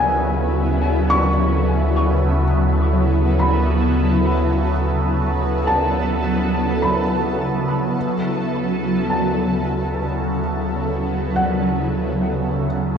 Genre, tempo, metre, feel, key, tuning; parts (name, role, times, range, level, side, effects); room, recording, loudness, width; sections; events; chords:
ambient; 53 BPM; 4/4; straight; D major; A4 = 440 Hz
shimmering ambient pad; sustained chords; 0.0-13.0 s; C#3 to A4; -19 LUFS; equal; chorus, built-in reverb, phaser
felt-muted upright piano; arpeggios; 0.0-13.0 s; F#5 to C#6; -24 LUFS; equal; tape echo
warm sub bass; bass; 0.0-13.0 s; D2; -22 LUFS; equal
wet concert hall reverb, RT60 1.9 s, small room reverb; worn, warbling old tape, cassette tape, warbly pitch drift; -17 LUFS; side -7 dB against mid
0.0-13.0 A section
fade-out on sub bass 0.0-13.0
0.0 Dmaj7